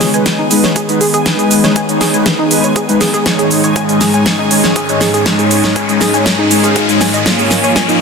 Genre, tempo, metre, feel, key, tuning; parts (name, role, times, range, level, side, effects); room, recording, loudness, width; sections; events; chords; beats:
progressive house; 120 BPM; 4/4; straight; A4 = 440 Hz
evolving wavetable pad; sustained chords; 0.0-8.0 s; G#2 to A#4; -18 LUFS; left 1 dB; ensemble chorus, built-in reverb, sidechain pumping
glassy wavetable pluck; arpeggios; 0.0-7.9 s; D#4 to G#5; -18 LUFS; right 1 dB; chorus, cassette tape, sidechain pumping, ping-pong delay
soft supersaw; stabs; 0.0-8.0 s; G#3 to E#5; -14 LUFS; left 1 dB; lush chorus, sidechain pumping, low-pass filter, ping-pong delay
big-room dance drum kit; drums; 0.0-8.0 s; cabasa, hi-hat, snare drum; -15 LUFS; right 1 dB; sidechain pumping on hats, sidechain pumping on perc
riser; sound effects; 1.8-8.0 s; -21 LUFS; left 1 dB
backwards swelling texture; texture; 0.0-8.0 s; G#5; -25 LUFS; left 4 dB; built-in reverb, sidechain pumping
electronic kick drum; drums; 0.3-7.9 s; -22 LUFS; equal; high-pass filter on kick
moderate huge ambient reverb, RT60 7.1 s; dense, heavily limited modern master; -9 LUFS; side -5 dB against mid
0.0-8.0 A section
build-up 0.0-8.0; drum fill 0.0-8.0; filter sweep on supersaw synth 0.0-8.0; filter sweep on ambient pad 0.0-8.0; riser 1.8-8.0
0.0 G#m; 3.3 C#sus2/G#; 7.3 A#m
0.26 0.76 | 1.26 1.76 2.26 2.76 | 3.26 3.76 4.26 4.76 | 5.26 5.76 6.26 6.76 | 7.26 7.76